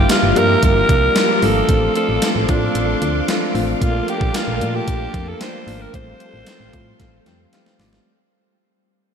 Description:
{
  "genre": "1980s-style pop",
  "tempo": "113 BPM",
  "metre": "4/4",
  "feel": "straight",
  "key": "F major",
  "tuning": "A4 = 439 Hz",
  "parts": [
    { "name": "raspy alto saxophone", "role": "melody", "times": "0.0-7.5 s", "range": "D4 to C5", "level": "-20 LUFS", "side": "right 1 dB", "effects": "analog delay" },
    { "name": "soft electric-piano-like synth keys", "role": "accompaniment", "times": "0.0-8.1 s", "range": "F3 to G5", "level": "-22 LUFS", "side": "left 2 dB", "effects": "chorus" },
    { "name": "string machine, cellos", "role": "sustained chords", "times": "0.0-8.0 s", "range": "G4 to D6", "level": "-25 LUFS", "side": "equal", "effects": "ensemble chorus" },
    { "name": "solid FM bass", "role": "bass", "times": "0.0-8.0 s", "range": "G1 to Bb2", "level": "-22 LUFS", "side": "right 1 dB", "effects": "none" },
    { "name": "gated 80s digital drum machine", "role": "drums", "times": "0.1-8.1 s", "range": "hi-hat, kick drum, snare drum, tambourine", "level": "-20 LUFS", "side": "right 1 dB", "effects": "gated reverb, gated reverb snare, overdrive" }
  ],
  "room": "moderate huge ambient reverb, RT60 8.6 s",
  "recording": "dreamy mix soaked in reverb",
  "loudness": "-15 LUFS",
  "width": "side -7 dB against mid",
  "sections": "0.0-8.1 A section",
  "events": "fade-out 0.0-8.1; drum fill 7.0-8.1; synth keys fill 7.0-8.1",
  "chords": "0.0 Gm7; 1.7 Dm7/A; 3.8 Bbmaj7; 5.9 Fadd9/A"
}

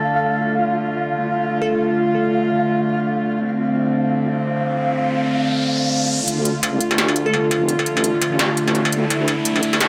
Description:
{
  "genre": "half-time drum and bass",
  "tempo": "170 BPM",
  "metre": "4/4",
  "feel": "swing 59% on 16ths, half-time",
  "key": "D minor",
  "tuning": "A4 = 438 Hz",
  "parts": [
    { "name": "warm studio cello section", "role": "sustained chords", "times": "0.0-9.9 s", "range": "D3 to A4", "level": "-22 LUFS", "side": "equal", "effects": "none" },
    { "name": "flickering grainy texture", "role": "texture", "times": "0.0-6.3 s", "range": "F5", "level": "-27 LUFS", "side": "equal", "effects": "built-in reverb" },
    { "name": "glassy wavetable pluck", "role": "melody", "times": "1.6-2.0, 7.3-7.6 s", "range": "A4", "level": "-28 LUFS", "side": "equal", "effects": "chorus, analog delay" },
    { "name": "riser", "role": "sound effects", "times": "4.5-9.9 s", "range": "none", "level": "-30 LUFS", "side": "equal", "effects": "none" },
    { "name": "deep soft wobble bass", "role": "bass", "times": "6.3-9.9 s", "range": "F1 to D2", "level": "-27 LUFS", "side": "equal", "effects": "chorus, high-pass filter" },
    { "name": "industrial drum kit", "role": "drums", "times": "6.3-9.9 s", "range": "hi-hat, snare drum, struck metal", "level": "-22 LUFS", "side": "equal", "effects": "high-pass filter on hats, studio reverb, high-pass filter on perc, high-pass filter on snare, analog delay" }
  ],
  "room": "moderate echo chamber reverb, RT60 2.3 s",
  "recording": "echo-heavy mix",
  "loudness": "-19 LUFS",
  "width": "mono",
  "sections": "0.0-6.3 A section; 6.3-9.9 B section",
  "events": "riser 4.5-6.3; build-up 6.3-9.9",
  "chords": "0.0 Dm"
}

